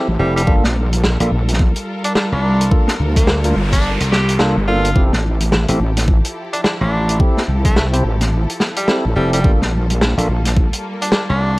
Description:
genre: glitch hop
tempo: 107 BPM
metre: 4/4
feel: swing 61% on 16ths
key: G dorian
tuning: A4 = 440 Hz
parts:
  - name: rich studio string section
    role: sustained chords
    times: 0.0-11.6 s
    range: F3 to Bb4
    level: -26 LUFS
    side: equal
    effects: sidechain pumping
  - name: tonewheel organ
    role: stabs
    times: 0.0-10.3 s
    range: Bb3 to C5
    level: -22 LUFS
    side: equal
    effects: slow rotary speaker, sidechain pumping, tape echo
  - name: wobble bass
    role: bass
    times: 0.1-10.7 s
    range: F1 to D2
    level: -17 LUFS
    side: equal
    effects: chorus, tube saturation
  - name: bright tenor saxophone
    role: melody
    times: 0.2-11.6 s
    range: G3 to G4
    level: -23 LUFS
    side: equal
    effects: vintage 12-bit sampler grit, tape echo
  - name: gritty slap bass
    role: bass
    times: 0.2-11.6 s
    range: F1 to C2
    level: -17 LUFS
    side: equal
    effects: overdrive, tube saturation
  - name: warm soul drum kit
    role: drums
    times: 0.4-11.3 s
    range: hi-hat, snare drum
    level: -19 LUFS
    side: equal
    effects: none
  - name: electronic kick drum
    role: drums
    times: 0.5-10.7 s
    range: none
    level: -14 LUFS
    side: equal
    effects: overdrive
  - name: noise sweep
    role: sound effects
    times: 3.1-5.0 s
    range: none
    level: -28 LUFS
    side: right 1 dB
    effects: none
room: small room ambience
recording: dry, gritty hardware recording, vinyl crackle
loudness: -14 LUFS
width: side -21 dB against mid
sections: 0.0-11.6 A section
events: noise sweep 3.1-5.0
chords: 0.5 Gm9; 5.0 Fmaj9; 9.4 Gm9

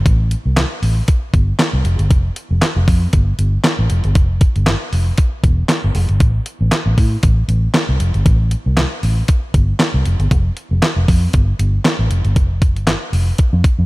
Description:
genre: early-eighties boogie funk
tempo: 117 BPM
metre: 4/4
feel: swing 56% on 16ths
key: unclear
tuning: A4 = 439 Hz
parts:
  - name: vintage muted fingered electric bass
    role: bass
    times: 0.0-13.9 s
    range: E1 to A2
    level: -15 LUFS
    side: equal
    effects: none
  - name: clean 12-bit digital drum machine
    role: drums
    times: 0.1-13.8 s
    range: handclaps, hi-hat, kick drum, snare drum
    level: -15 LUFS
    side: equal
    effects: none
room: little or no reverb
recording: none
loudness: -13 LUFS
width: side -21 dB against mid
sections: 0.0-13.9 A section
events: none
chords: none

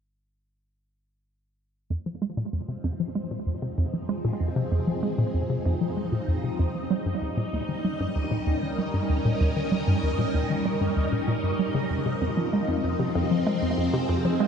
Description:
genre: ambient, sequencer-driven space music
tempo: 96 BPM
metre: 4/4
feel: straight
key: F minor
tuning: A4 = 441 Hz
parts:
  - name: phased string machine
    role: sustained chords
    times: 1.9-14.5 s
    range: F3 to Eb5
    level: -29 LUFS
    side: equal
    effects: ensemble chorus, phaser
  - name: hollow square pluck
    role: riff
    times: 1.9-14.5 s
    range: Eb2 to Ab3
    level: -25 LUFS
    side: equal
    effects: chorus, phaser, analog delay
room: wet huge ambient reverb, RT60 8.0 s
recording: in a vast, echoing space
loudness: -24 LUFS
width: side -7 dB against mid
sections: 1.9-14.5 A section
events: fade-in on string machine 1.9-14.5; filter sweep on synth arpeggio sound 1.9-14.5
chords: 1.9 Fm7; 6.9 Eb7; 11.9 Fm7

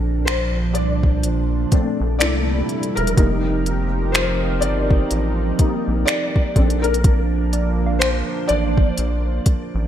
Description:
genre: contemporary R&B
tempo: 62 BPM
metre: 4/4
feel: swing 58% on 16ths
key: Bb major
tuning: A4 = 440 Hz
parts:
  - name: felt-muted upright piano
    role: accompaniment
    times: 0.0-9.9 s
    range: G3 to D5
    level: -24 LUFS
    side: left 3 dB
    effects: ensemble chorus
  - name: chorused pulse-width pad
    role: sustained chords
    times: 0.0-9.9 s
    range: Bb2 to Bb4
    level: -24 LUFS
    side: right 4 dB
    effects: none
  - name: rubbery square bass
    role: bass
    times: 0.0-9.9 s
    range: E1 to C2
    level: -21 LUFS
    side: equal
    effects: none
  - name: smooth R&B drum kit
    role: drums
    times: 0.3-9.7 s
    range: finger snaps, hi-hat, kick drum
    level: -19 LUFS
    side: equal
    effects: overdrive, gated reverb
  - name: soft round pluck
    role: texture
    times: 7.5-9.9 s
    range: D5 to F5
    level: -34 LUFS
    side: right 4 dB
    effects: chorus, digital delay
room: light reverb, digital ambience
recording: bright 1980s-style digital production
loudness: -17 LUFS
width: side -10 dB against mid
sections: 0.0-9.9 A section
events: felt piano solo 0.0-9.9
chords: 0.0 Bbmaj7; 2.2 C13; 3.2 F7sus4; 6.6 Bbmaj7

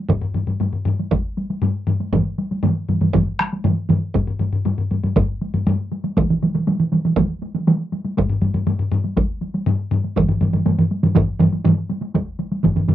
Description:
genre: japanese traditional, taiko drum ensemble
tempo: 120 BPM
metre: 4/4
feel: straight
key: none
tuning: none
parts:
  - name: solo taiko drums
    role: percussion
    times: 0.1-12.9 s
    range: none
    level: -21 LUFS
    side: left 3 dB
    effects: none
  - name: taiko ensemble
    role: percussion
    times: 0.1-12.9 s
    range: none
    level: -22 LUFS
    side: equal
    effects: none
  - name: taiko ensemble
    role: percussion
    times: 0.1-12.8 s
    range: none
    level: -22 LUFS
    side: right 2 dB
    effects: none
  - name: taiko ensemble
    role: percussion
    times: 2.1-12.9 s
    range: none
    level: -19 LUFS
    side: right 4 dB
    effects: none
room: wet booth ambience, RT60 0.2 s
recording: home recording on cassette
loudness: -18 LUFS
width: side -12 dB against mid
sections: 0.0-12.2 A section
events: speeding up 0.0-12.9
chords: none

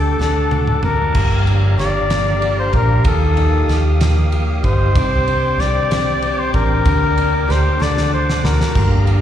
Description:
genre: six-eight pop ballad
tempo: 63 BPM (dotted quarters)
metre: 6/8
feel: straight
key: G minor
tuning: A4 = 438 Hz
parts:
  - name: warm flugelhorn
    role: melody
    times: 0.0-9.1 s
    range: A4 to D5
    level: -20 LUFS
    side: left 3 dB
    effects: plate reverb, slapback echo
  - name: fingerpicked plugged-in steel-string acoustic guitar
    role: accompaniment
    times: 0.0-9.2 s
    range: G2 to A4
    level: -23 LUFS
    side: equal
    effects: double-tracked left and right, slapback echo
  - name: tonewheel organ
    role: sustained chords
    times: 0.0-9.2 s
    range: G4 to Eb6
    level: -27 LUFS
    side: equal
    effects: overdrive, chorus vibrato, wide subtle chorus, plate reverb
  - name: picked steel-string acoustic guitar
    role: arpeggios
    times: 0.0-9.2 s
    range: G2 to A4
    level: -29 LUFS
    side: right 3 dB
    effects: plate reverb, slapback echo
  - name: vintage muted fingered electric bass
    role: bass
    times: 0.0-9.2 s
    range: G1 to Eb2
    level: -17 LUFS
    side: equal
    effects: none
  - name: loose indie drum kit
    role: drums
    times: 0.2-9.2 s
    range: crash cymbal, kick drum, ride cymbal, snare drum, splash cymbal, toms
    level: -22 LUFS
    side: equal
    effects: none
room: light reverb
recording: live gig heard through the venue's PA, recital hall reverb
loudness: -14 LUFS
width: side -10 dB against mid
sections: 0.0-1.1 A section; 1.1-9.2 B section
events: drum fill 0.2-1.1, 7.8-8.8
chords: 0.2 D; 1.1 Gm7; 3.1 Ebadd9; 5.0 Csus2; 6.9 Gm/D; 7.8 D

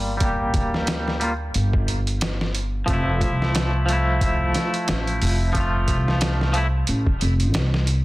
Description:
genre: trip hop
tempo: 90 BPM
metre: 4/4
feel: swing 58% on 16ths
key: unclear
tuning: A4 = 440 Hz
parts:
  - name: twangy electric guitar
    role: accompaniment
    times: 0.0-6.7 s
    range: F3 to G4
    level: -25 LUFS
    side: equal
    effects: tremolo, vintage 12-bit sampler grit, low-pass filter, tape echo
  - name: upright bass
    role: bass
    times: 0.0-8.0 s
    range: F1 to D2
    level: -22 LUFS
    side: equal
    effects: none
  - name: trip hop sampler-style drum kit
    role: drums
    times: 0.2-8.0 s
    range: hi-hat, kick drum, snare drum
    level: -24 LUFS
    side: equal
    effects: none
room: light reverb, digital ambience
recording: dense, heavily limited modern master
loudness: -19 LUFS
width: side -19 dB against mid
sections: 0.0-8.0 A section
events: filter sweep on clean electric guitar 0.0-8.0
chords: 0.0 Gm; 2.9 Fmaj7

